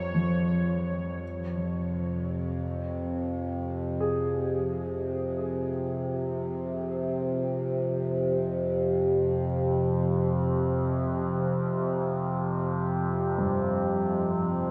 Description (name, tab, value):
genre	dark ambient drone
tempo	free time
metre	none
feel	none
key	F minor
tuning	A4 = 440 Hz
part	dark grand piano	arpeggios	0.0-14.7 s	G2 to Ab4	-34 LUFS	equal	diffuse ambient delay
part	overtone-sweeping drone	drone	0.0-14.7 s	F2 to C3	-29 LUFS	equal	chorus, built-in reverb
part	bubbling stepped-filter texture	texture	0.0-1.3 s	Db5	-42 LUFS	equal	chorus, built-in reverb
room	wet huge ambient reverb, RT60 8.2 s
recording	studio ambience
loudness	-29 LUFS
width	mono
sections	0.0-1.2 A section; 1.2-14.7 B section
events	none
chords	0.0 Db; 1.2 Fm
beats	free time